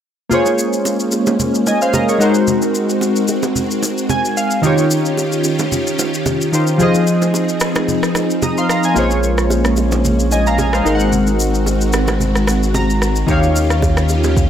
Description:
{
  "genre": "amapiano",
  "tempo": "111 BPM",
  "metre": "4/4",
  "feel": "swing 55% on 16ths",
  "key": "Bb minor",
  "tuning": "A4 = 439 Hz",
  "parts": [
    { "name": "warm analog keys", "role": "accompaniment", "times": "0.3-14.5 s", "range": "Eb3 to Eb6", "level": "-17 LUFS", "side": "equal", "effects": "chorus" },
    { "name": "string machine, violas", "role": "sustained chords", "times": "0.3-14.5 s", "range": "Eb3 to Ab4", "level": "-19 LUFS", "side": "equal", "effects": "ensemble chorus, sidechain pumping" },
    { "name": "afro-pop drum kit", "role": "drums", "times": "0.3-14.5 s", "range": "kick drum, rim click, shaker", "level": "-22 LUFS", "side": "equal", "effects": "none" },
    { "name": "congas and bongos", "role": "percussion", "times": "0.3-14.5 s", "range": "none", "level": "-24 LUFS", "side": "right 4 dB", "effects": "none" },
    { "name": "round analog bass", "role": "bass", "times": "9.0-14.5 s", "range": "Ab1 to Eb2", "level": "-17 LUFS", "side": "equal", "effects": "none" }
  ],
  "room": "light reverb",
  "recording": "none",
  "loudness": "-13 LUFS",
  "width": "side -9 dB against mid",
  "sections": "0.3-14.5 A section",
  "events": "synth keys fill 3.8-4.6, 12.5-13.3",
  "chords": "0.3 Bbm7; 2.2 Ab9; 4.6 Eb9; 6.8 Fm7; 9.0 Bbm7; 10.9 Ab9; 13.3 Eb9"
}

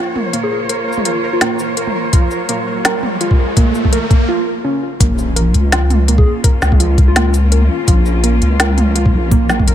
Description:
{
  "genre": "half-time drum and bass",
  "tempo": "167 BPM",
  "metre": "4/4",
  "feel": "swing 56% on 16ths, half-time",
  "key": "Bb minor",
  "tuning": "A4 = 439 Hz",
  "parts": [
    { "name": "dark studio cello section", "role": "sustained chords", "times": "0.0-9.7 s", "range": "Bb3 to Db5", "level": "-23 LUFS", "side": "left 2 dB", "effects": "sidechain pumping" },
    { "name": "warbly dusty pluck", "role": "arpeggios", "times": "0.0-9.7 s", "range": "Bb3 to Bb4", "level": "-20 LUFS", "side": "right 2 dB", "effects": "chorus, cassette tape, ping-pong delay" },
    { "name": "riser and impact", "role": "sound effects", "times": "1.5-6.4 s", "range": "none", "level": "-24 LUFS", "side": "right 1 dB", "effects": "none" },
    { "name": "pulsing gated texture", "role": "texture", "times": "0.0-4.3 s", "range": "Bb4", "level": "-27 LUFS", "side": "right 3 dB", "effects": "chorus, built-in reverb" },
    { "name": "organic electronic drum kit", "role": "drums", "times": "0.2-9.7 s", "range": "hi-hat, shaker, snare drum, toms", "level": "-18 LUFS", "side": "equal", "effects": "none" },
    { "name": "soft struck synth lead", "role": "melody", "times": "0.4-1.6, 6.2-7.3 s", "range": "F4 to Ab4", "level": "-25 LUFS", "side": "left 4 dB", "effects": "chorus, ping-pong delay" },
    { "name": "electronic kick drum", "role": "drums", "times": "2.1-9.7 s", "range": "none", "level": "-12 LUFS", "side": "equal", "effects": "none" },
    { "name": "deep soft wobble bass", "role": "bass", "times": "5.0-9.7 s", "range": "Bb1 to Db2", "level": "-13 LUFS", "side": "equal", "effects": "chorus" }
  ],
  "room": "digital ambience",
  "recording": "faint mains hum",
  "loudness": "-11 LUFS",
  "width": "side -11 dB against mid",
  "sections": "0.0-5.0 A section; 5.0-9.7 B section",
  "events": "build-up 0.0-5.0; riser 1.5-4.3; break 4.3-5.0; drop 5.0-9.7; impact 5.0-6.4",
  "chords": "0.0 Bbm"
}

